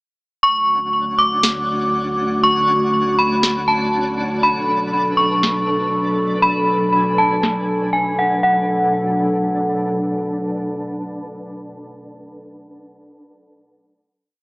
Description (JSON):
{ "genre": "hip hop, atmospheric cloud-rap", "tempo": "120 BPM", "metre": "4/4", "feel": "half-time", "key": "B dorian", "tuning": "A4 = 439 Hz", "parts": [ { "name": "metallic FM bell", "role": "melody", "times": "0.4-9.9 s", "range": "F#5 to D6", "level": "-17 LUFS", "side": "equal", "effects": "chorus, low-pass filter, digital delay" }, { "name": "dark analog pad", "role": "sustained chords", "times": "0.4-12.1 s", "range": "D2 to A4", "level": "-21 LUFS", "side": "equal", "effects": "chorus, tremolo" }, { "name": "twinkling granular texture", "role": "texture", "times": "0.7-12.1 s", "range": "C#4 to A5", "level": "-29 LUFS", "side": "equal", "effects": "built-in reverb" }, { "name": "electronic snare drum", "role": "drums", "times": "1.4-7.5 s", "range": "none", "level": "-17 LUFS", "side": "equal", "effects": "none" } ], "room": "moderate huge ambient reverb, RT60 8.5 s", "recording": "low-pass filter, small speaker sound", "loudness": "-15 LUFS", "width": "side -29 dB against mid", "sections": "0.4-8.4 breakdown; 8.4-12.4 final chord", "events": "none", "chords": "0.4 Dmaj7; 4.4 Bm7", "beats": "| 0.43 0.93 1.43 1.93 | 2.43 2.93 3.43 3.93 | 4.43 4.93 5.43 5.93 | 6.43 6.93 7.43 7.93 | 8.43 8.93 9.43 9.93 | 10.43 10.93 11.43 11.93" }